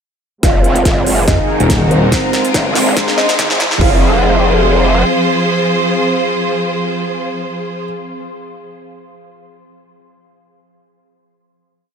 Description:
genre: heavy wobble dubstep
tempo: 142 BPM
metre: 4/4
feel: swing 54% on 16ths, half-time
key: F phrygian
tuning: A4 = 438 Hz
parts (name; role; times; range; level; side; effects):
- felt-muted upright piano; melody; 0.4-7.8 s; C4 to F5; -21 LUFS; left 1 dB; wide subtle chorus, low-pass filter, diffuse ambient delay
- clear studio string section; sustained chords; 0.4-7.8 s; Eb3 to C5; -18 LUFS; right 1 dB; sidechain pumping, low-pass filter
- growl bass; bass; 0.4-5.0 s; F1 to Gb1; -14 LUFS; equal; chorus, overdrive
- big-room dance drum kit; drums; 0.4-3.9 s; hi-hat, kick drum; -16 LUFS; equal; studio reverb
- big-room dance drum kit; drums; 0.4-3.8 s; hi-hat, snare drum; -20 LUFS; equal; high-pass filter on snare, studio reverb, high-pass filter on hats
- riser; sound effects; 1.5-3.8 s; none; -24 LUFS; right 1 dB; none
- airy breathy pad; texture; 0.4-8.0 s; C4 to C6; -20 LUFS; equal; chorus, sidechain pumping
- snarling distorted saw bass; bass; 1.3-3.8 s; Eb1 to Ab1; -14 LUFS; equal; overdrive
room: moderate cathedral reverb, RT60 5.4 s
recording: dreamy mix soaked in reverb, high-pass filter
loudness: -11 LUFS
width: side -7 dB against mid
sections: 0.4-3.8 build; 3.8-7.2 final chord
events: build-up 0.4-3.8; drum fill 0.4-3.8; filter sweep on string section 0.4-3.8; filter sweep on felt piano 0.4-3.8; filter sweep 0.4-3.8; riser 1.5-3.8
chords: 0.4 Fm; 1.3 Ebm; 2.1 Fm; 3.0 Ab; 3.8 Fm

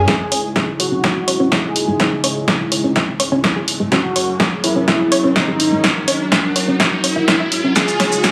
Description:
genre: melodic techno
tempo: 125 BPM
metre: 4/4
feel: straight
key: C# dorian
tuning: A4 = 442 Hz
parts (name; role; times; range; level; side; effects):
- warm analog pad; sustained chords; 0.0-8.3 s; C#3 to A#4; -26 LUFS; equal; chorus, sidechain pumping
- analog pluck; arpeggios; 0.0-8.3 s; G#3 to E5; -24 LUFS; equal; chorus, sidechain pumping, dub echo
- dark detuned saw bass; bass; 0.0-8.2 s; F#1 to G#2; -32 LUFS; equal; none
- swell and riser; sound effects; 0.0-8.3 s; none; -27 LUFS; equal; none
- unison lead; melody; 0.1-8.3 s; D#4 to G#4; -24 LUFS; equal; sidechain pumping, digital delay
- electronic kick drum; drums; 0.1-8.3 s; none; -24 LUFS; equal; high-pass filter on kick, high-pass filter on room
- punchy analog drum machine; drums; 0.1-8.3 s; hi-hat, shaker, snare drum; -20 LUFS; equal; none
room: moderate lush hall reverb, RT60 1.8 s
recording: high-pass filter, studio ambience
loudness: -16 LUFS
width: mono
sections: 0.1-8.3 A section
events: build-up 0.1-8.3; drum fill 0.1-8.3; riser 0.1-8.3; filter sweep on synth arpeggio sound 0.1-8.3; filter sweep on analog synth lead 0.1-8.3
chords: 0.1 C#m; 3.9 F#; 7.8 C#m

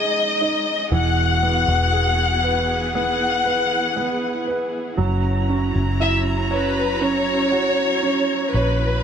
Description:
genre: pop ballad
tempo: 59 BPM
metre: 4/4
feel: straight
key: unclear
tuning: A4 = 441 Hz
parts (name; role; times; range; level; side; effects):
- warm studio violin section; melody; 0.0-9.0 s; B4 to F#5; -21 LUFS; left 3 dB; digital delay
- warm concert grand piano; accompaniment; 0.0-9.0 s; E3 to C#5; -24 LUFS; right 5 dB; none
- dark studio string section; sustained chords; 0.0-9.0 s; E3 to A#5; -27 LUFS; equal; none
- vintage muted fingered electric bass; bass; 0.0-9.0 s; E1 to A#1; -22 LUFS; left 1 dB; none
room: light reverb, small room ambience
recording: nothing above 10.7 kHz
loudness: -18 LUFS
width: side -8 dB against mid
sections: 0.0-9.0 A section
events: none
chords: 0.0 G#sus4; 0.9 Eadd9; 5.0 F#7

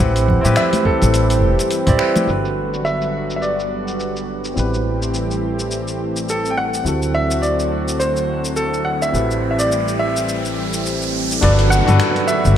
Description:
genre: sunset chillout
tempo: 105 BPM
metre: 4/4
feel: swing 57% on 16ths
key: A dorian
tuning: A4 = 442 Hz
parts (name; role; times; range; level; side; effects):
- clear grand piano; melody; 0.0-12.6 s; A4 to G5; -22 LUFS; equal; digital delay
- barky tine electric piano; accompaniment; 0.0-12.6 s; C4 to D5; -22 LUFS; right 1 dB; auto-pan, digital delay
- lush unison pad; sustained chords; 0.0-12.6 s; D3 to G4; -24 LUFS; right 1 dB; chorus
- upright bass; bass; 0.0-12.6 s; E1 to D2; -20 LUFS; equal; none
- dusty soul sampler-style drum kit; drums; 0.0-12.5 s; cabasa, finger snaps, hi-hat; -28 LUFS; left 1 dB; low-pass filter on hats, studio reverb, low-pass filter on perc, low-pass filter on snare, gated reverb
- electronic kick drum; drums; 0.0-2.0, 11.4-11.6 s; none; -19 LUFS; equal; studio reverb
- congas; percussion; 0.3-2.3 s; none; -24 LUFS; equal; none
- riser and downlifter; sound effects; 8.4-12.6 s; none; -26 LUFS; right 1 dB; none
room: moderate plate reverb, RT60 2.2 s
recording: bright 1980s-style digital production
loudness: -16 LUFS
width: side -10 dB against mid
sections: 0.0-2.3 A section; 2.3-11.4 B section; 11.4-12.6 C section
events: riser 8.4-11.4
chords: 0.0 Am7; 2.3 Gmaj7; 4.6 Am7; 6.9 D7; 9.1 Am7; 11.4 Gmaj7

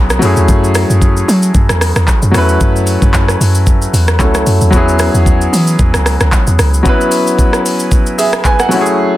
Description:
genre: amapiano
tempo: 113 BPM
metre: 4/4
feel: swing 55% on 16ths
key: E major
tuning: A4 = 440 Hz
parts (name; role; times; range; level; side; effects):
- clear concert grand piano; accompaniment; 0.0-9.2 s; F#3 to G#5; -13 LUFS; left 1 dB; none
- deep log drum bass; bass; 0.0-6.8 s; B1 to F#3; -12 LUFS; equal; none
- smooth R&B drum kit; drums; 0.1-9.0 s; handclaps, hi-hat, kick drum, rim click, shaker; -13 LUFS; equal; none
room: little or no reverb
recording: dense, heavily limited modern master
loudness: -9 LUFS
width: side -15 dB against mid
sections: 0.0-9.2 A section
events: none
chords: 0.2 F#m9; 4.7 E69

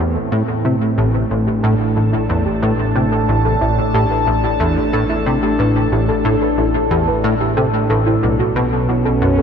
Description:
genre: ambient, sequencer-driven space music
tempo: 91 BPM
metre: 4/4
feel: straight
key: A minor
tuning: A4 = 440 Hz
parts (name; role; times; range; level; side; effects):
- phased analog pad; sustained chords; 0.0-9.4 s; A2 to A5; -18 LUFS; equal; phaser, chorus
- soft round pluck; arpeggios; 0.0-9.4 s; E4 to B4; -23 LUFS; right 1 dB; chorus, auto-pan, cassette tape, tape echo
- plucky analog bass; riff; 0.0-9.4 s; A1 to C3; -18 LUFS; equal; ensemble chorus, tape echo
- warm sub bass; bass; 0.0-9.4 s; A1 to B1; -27 LUFS; equal; none
room: wet lush hall reverb, RT60 2.4 s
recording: dreamy mix soaked in reverb, lossy compression artefacts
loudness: -14 LUFS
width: side -7 dB against mid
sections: 0.0-9.4 A section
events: fade-in on synth arpeggio sound 0.0-9.4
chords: 0.0 Am7; 8.2 B7(no3)

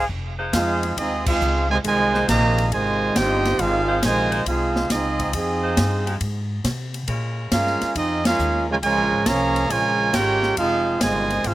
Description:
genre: jazz, big band swing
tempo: 137 BPM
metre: 4/4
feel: swing 68% on 8ths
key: F minor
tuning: A4 = 435 Hz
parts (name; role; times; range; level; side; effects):
- upright bass; bass; 0.0-11.5 s; F1 to C3; -26 LUFS; equal; none
- swinging big-band drum kit; drums; 0.1-11.5 s; crash cymbal, hi-hat, kick drum, ride cymbal, snare drum; -27 LUFS; left 1 dB; none
- bright saxophone section; sustained chords; 0.4-10.3 s; Ab3 to C5; -30 LUFS; left 1 dB; none
- clear trumpet section; melody; 0.5-11.5 s; C4 to Bb5; -22 LUFS; right 2 dB; slapback echo
- bright trombone section; second line; 0.5-11.5 s; C3 to Ab4; -23 LUFS; right 2 dB; slapback echo
room: little or no reverb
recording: recorded outdoors, with no room sound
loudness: -18 LUFS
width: side -15 dB against mid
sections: 0.1-11.5 A section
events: band accent 1.2, 8.2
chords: 0.1 Fm7; 7.1 Bbm7; 10.6 Fm7

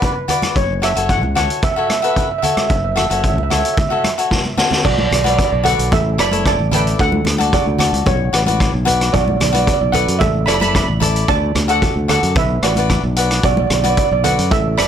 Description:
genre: calypso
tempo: 112 BPM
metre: 4/4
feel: straight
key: B minor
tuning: A4 = 437 Hz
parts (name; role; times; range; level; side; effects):
- steel pan; melody; 0.0-14.9 s; F#4 to B5; -19 LUFS; right 5 dB; digital delay
- cavaquinho; accompaniment; 0.0-14.9 s; E4 to E5; -20 LUFS; left 5 dB; none
- street-band drum kit; drums; 0.0-14.9 s; crash cymbal, hi-hat, kick drum, rim click, snare drum; -19 LUFS; equal; soft clipping on kick, soft clipping on snare
- congas; percussion; 0.3-14.6 s; none; -24 LUFS; right 1 dB; none
- modern bright fingered electric bass; bass; 0.6-14.9 s; F#1 to F#2; -19 LUFS; equal; none
room: moderate studio reverb, RT60 0.5 s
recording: blown-out, overdriven recording, overdrive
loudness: -13 LUFS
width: side -8 dB against mid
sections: 0.0-4.8 A section; 4.8-14.9 B section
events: drum fill 4.3-4.8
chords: 0.0 Bm; 0.6 F#m7; 4.8 Bm; 5.9 Asus4; 7.0 D; 8.1 Bmadd9; 9.1 Bm; 10.2 Asus4; 11.3 D; 12.4 Bm

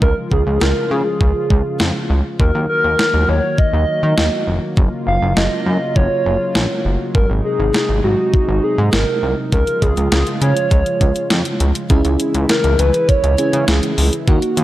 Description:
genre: synth-pop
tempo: 101 BPM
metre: 4/4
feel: straight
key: unclear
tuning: A4 = 440 Hz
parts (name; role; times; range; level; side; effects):
- hollow clarinet-like synth lead; melody; 0.0-14.1 s; F#4 to E#5; -19 LUFS; equal; chorus, phaser, analog delay
- warm analog pad; sustained chords; 0.0-14.6 s; B#2 to F#4; -24 LUFS; equal; chorus
- chorused synth bass; bass; 0.0-14.6 s; E#1 to D#3; -17 LUFS; equal; none
- clean 12-bit digital drum machine; drums; 0.0-14.6 s; hi-hat, kick drum, snare drum; -17 LUFS; equal; overdrive, gated reverb
- mellow FM electric piano; accompaniment; 11.9-14.6 s; A#3 to G#4; -20 LUFS; right 1 dB; chorus
room: light reverb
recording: lossy compression artefacts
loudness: -14 LUFS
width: side -15 dB against mid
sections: 0.0-11.9 A section; 11.9-14.6 B section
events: none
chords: 0.0 C#; 2.4 D#m; 4.8 F#maj7; 7.1 G#7; 9.5 C#; 11.9 C#m

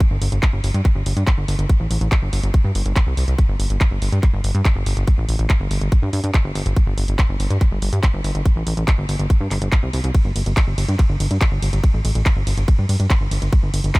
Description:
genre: psychedelic trance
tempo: 142 BPM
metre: 4/4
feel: straight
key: unclear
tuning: A4 = 440 Hz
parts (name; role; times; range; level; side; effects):
- drum and bass drum kit; drums; 0.0-14.0 s; handclaps, hi-hat, ride cymbal; -27 LUFS; equal; none
- electronic kick drum; drums; 0.0-14.0 s; none; -15 LUFS; equal; none
- plucky analog bass; bass; 0.1-13.9 s; G1 to G2; -19 LUFS; equal; none
room: little or no reverb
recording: none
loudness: -16 LUFS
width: side -23 dB against mid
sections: 0.0-14.0 A section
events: none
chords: none

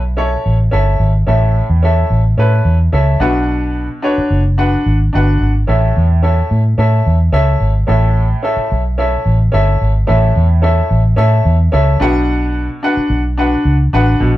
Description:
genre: uptempo 1960s-style soul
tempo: 109 BPM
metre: 4/4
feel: straight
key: A major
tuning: A4 = 440 Hz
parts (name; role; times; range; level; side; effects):
- vintage muted fingered electric bass; bass; 0.0-14.4 s; F#1 to A2; -12 LUFS; equal; none
- clear upright piano; accompaniment; 0.2-14.4 s; A2 to F#5; -16 LUFS; equal; none
room: moderate studio reverb, RT60 0.8 s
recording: band playing live in one room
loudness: -11 LUFS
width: side -15 dB against mid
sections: 0.0-7.9 A section; 7.9-14.4 A section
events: none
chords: 0.0 A; 3.2 Bm; 5.7 A; 12.0 Bm

